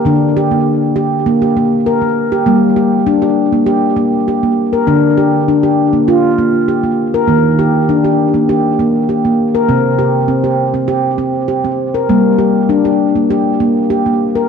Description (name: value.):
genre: world meditative, meditative tuned percussion.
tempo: 100 BPM.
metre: 4/4.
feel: straight.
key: G minor.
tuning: A4 = 441 Hz.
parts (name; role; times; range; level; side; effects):
handpan; solo; 0.0-14.5 s; C3 to Bb4; -10 LUFS; equal; diffuse ambient delay.
room: wet concert hall reverb, RT60 2.3 s.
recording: dark, warm production.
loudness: -10 LUFS.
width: side -6 dB against mid.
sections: 0.0-2.5 A section; 2.5-14.5 B section.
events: none.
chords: 0.0 Gm/D; 2.5 Gm; 4.9 Dm; 7.3 Eb; 9.7 C5; 12.1 Gm.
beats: | 0.06 0.66 1.26 1.86 | 2.47 3.07 3.67 4.28 | 4.88 5.48 6.08 6.68 | 7.28 7.88 8.49 9.09 | 9.69 10.29 10.89 11.49 | 12.09 12.70 13.30 13.90.